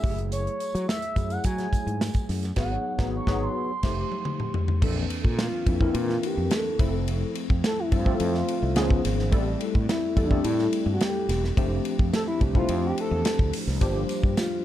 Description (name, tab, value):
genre	polished 1980s jazz-funk pop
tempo	107 BPM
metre	4/4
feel	straight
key	unclear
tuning	A4 = 440 Hz
part	expressive synth lead	melody	0.0-14.6 s	D4 to C#6	-30 LUFS	left 1 dB	chorus
part	mellow tine electric piano	accompaniment	0.0-14.6 s	E3 to E5	-29 LUFS	left 1 dB	medium stereo tremolo, ensemble chorus
part	fretless electric bass	bass	0.0-14.3 s	E1 to F#3	-28 LUFS	equal	none
part	modern studio drum kit	drums	0.0-14.5 s	crash cymbal, hi-hat, kick drum, ride cymbal, snare drum, toms	-26 LUFS	equal	none
part	tambourine	percussion	0.3-2.6, 13.8-14.5 s	none	-46 LUFS	right 7 dB	none
room	studio ambience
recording	dark, warm production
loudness	-23 LUFS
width	side -12 dB against mid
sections	0.0-4.8 A section; 4.8-14.6 B section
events	band accent 2.6-4.8; drum fill 3.7-4.8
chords	0.0 F#m9; 2.6 G#m7; 3.7 F9; 4.8 Bbmaj9#11; 6.8 Fmaj7; 8.8 C#9; 9.3 Am7; 11.6 F69; 13.8 Gm7